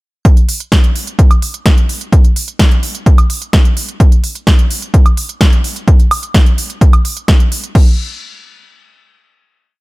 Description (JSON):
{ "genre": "EDM", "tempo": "128 BPM", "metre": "4/4", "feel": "straight", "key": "none", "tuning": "none", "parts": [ { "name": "electronic kick drum", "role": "drums", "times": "0.2-7.8 s", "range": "none", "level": "-8 LUFS", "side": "equal", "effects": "none" }, { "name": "big-room dance drum kit", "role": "drums", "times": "0.3-7.8 s", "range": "crash cymbal, hi-hat, snare drum, woodblock", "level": "-18 LUFS", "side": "right 1 dB", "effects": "none" } ], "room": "little or no reverb", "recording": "none", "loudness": "-9 LUFS", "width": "side -22 dB against mid", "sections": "0.3-7.8 drop; 7.8-9.6 final hit", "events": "drop 0.3-7.8", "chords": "none" }